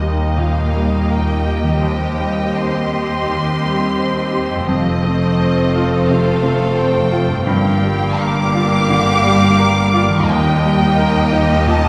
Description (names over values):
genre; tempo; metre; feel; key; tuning
cinematic, emotional film score for orchestra; 86 BPM; 4/4; rubato; Eb lydian; A4 = 440 Hz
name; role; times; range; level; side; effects
warm studio violin section; melody; 0.0-11.9 s; Eb5 to D6; -25 LUFS; equal; none
rich studio violin section; second line; 0.0-11.9 s; G4 to F5; -25 LUFS; equal; none
bright baby grand piano; accompaniment; 0.0-11.9 s; Eb2 to C5; -22 LUFS; equal; none
warm studio viola section; accompaniment; 0.0-11.9 s; Bb3 to G4; -25 LUFS; equal; none
concert harp; arpeggios; 0.0-11.9 s; F2 to C5; -28 LUFS; equal; none
rich studio cello section; bass; 0.0-11.9 s; Eb2 to G2; -24 LUFS; equal; none
warm studio double bass section; bass; 0.0-11.9 s; F1 to Eb2; -23 LUFS; equal; none
room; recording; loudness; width
wet scoring stage reverb, RT60 1.6 s; recorded in a church or concert hall; -16 LUFS; mono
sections
0.0-11.9 A section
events
none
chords
0.0 Eb; 1.8 Cm/Eb; 4.7 F; 7.5 Gm7; 10.3 Eb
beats
0.38 1.10 | 1.81 2.57 3.29 3.99 | 4.69 5.40 6.09 6.77 | 7.47 8.19 8.89 9.58 | 10.28 10.97 11.67